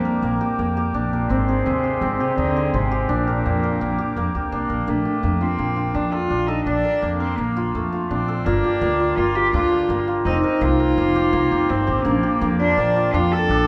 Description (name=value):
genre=contemporary instrumental, contemporary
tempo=167 BPM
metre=5/4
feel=straight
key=Bb mixolydian, Bb major from 4.9 s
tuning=A4 = 441 Hz
part: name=rich cello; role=melody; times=0.0-13.7 s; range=Ab2 to A4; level=-26 LUFS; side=equal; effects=none
part: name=vibraphone with medium mallets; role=second line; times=0.0-13.7 s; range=Bb3 to F4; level=-28 LUFS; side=equal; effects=none
part: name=clear woodwind section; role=sustained chords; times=0.0-4.9, 12.1-13.7 s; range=Bb3 to D6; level=-34 LUFS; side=equal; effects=none
part: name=hammered dulcimer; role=arpeggios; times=0.0-13.7 s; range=A3 to Bb4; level=-26 LUFS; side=equal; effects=none
part: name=upright bass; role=bass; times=0.0-13.7 s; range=F1 to F2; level=-26 LUFS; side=equal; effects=none
room=moderate recital hall reverb, RT60 1.3 s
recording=none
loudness=-21 LUFS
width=mono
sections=0.0-4.9 A section; 4.9-13.7 B section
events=none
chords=0.0 Bb6; 1.3 Abmaj7; 3.1 Bb6; 4.9 Bbmaj7; 8.5 Gm7; 10.3 F9sus4; 12.1 Bbmaj7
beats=0.22 0.58 0.94 | 1.30 1.65 2.01 2.37 2.73 | 3.09 3.44 3.80 4.16 4.52 | 4.88 5.23 5.59 5.95 6.31 | 6.67 7.03 7.38 7.74 8.10 | 8.46 8.82 9.18 9.54 9.90 | 10.26 10.62 10.98 11.34 11.70 | 12.06 12.42 12.78 13.14 13.50